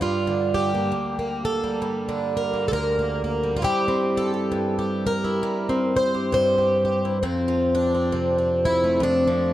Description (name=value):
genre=folk, solo fingerstyle acoustic guitar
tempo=67 BPM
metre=4/4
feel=swing 58% on 8ths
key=G dorian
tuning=A4 = 440 Hz
part: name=picked plugged-in twelve-string acoustic guitar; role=solo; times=0.0-9.5 s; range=D2 to C5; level=-20 LUFS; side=equal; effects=none
room=light reverb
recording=dark, warm production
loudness=-20 LUFS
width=side -13 dB against mid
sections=0.0-9.5 A section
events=none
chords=0.0 Gm; 3.6 C/G; 7.2 F